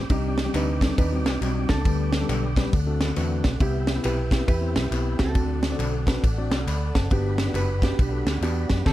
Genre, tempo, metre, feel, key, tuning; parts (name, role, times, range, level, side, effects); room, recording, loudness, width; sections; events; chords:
uptempo gospel; 137 BPM; 4/4; swing 64% on 8ths; G major; A4 = 440 Hz
mellow tonewheel organ; sustained chords; 0.0-8.9 s; C4 to D6; -35 LUFS; right 2 dB; fast rotary speaker, chorus vibrato
vintage muted fingered electric bass; bass; 0.0-8.9 s; F#1 to F#2; -26 LUFS; equal
hollow-body jazz guitar; melody; 0.1-8.9 s; B3 to B4; -30 LUFS; right 2 dB
mellow tine electric piano; accompaniment; 0.1-8.9 s; G2 to B5; -30 LUFS; left 5 dB
tight funk drum kit; drums; 0.1-8.9 s; crash cymbal, kick drum, ride cymbal, snare drum; -25 LUFS; equal
tambourine and handclaps; percussion; 0.1-8.8 s; -39 LUFS; left 1 dB
little or no reverb; dark, warm production; -21 LUFS; side -14 dB against mid
0.0-8.9 A section
0.1 Cmadd9; 1.9 G/D; 2.7 D7; 3.6 Cmaj7; 5.4 D7; 7.1 Gmaj7